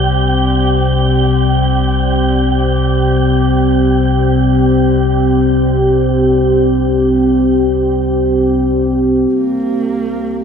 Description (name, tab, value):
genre	ambient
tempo	free time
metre	none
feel	none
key	unclear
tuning	A4 = 435 Hz
part	deep dark ambient pad	sustained chords	0.0-10.4 s	C4 to D5	-13 LUFS	equal	chorus, built-in reverb
part	deep rumbling drone	drone	0.0-10.4 s	C2 to C3	-15 LUFS	left 2 dB	built-in reverb
part	wind-like tuned noise texture	texture	0.0-9.3 s	G5	-23 LUFS	right 4 dB	built-in reverb
part	dark horsehead fiddle	melody	9.3-10.4 s	Bb3	-20 LUFS	right 3 dB	none
room	wet cathedral reverb, RT60 5.4 s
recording	none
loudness	-11 LUFS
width	side -7 dB against mid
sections	0.0-9.3 A section; 9.3-10.4 B section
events	fade-out on synth texture 0.0-9.3; filter sweep on synth drone 0.0-9.3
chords	0.0 Csus2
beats	free time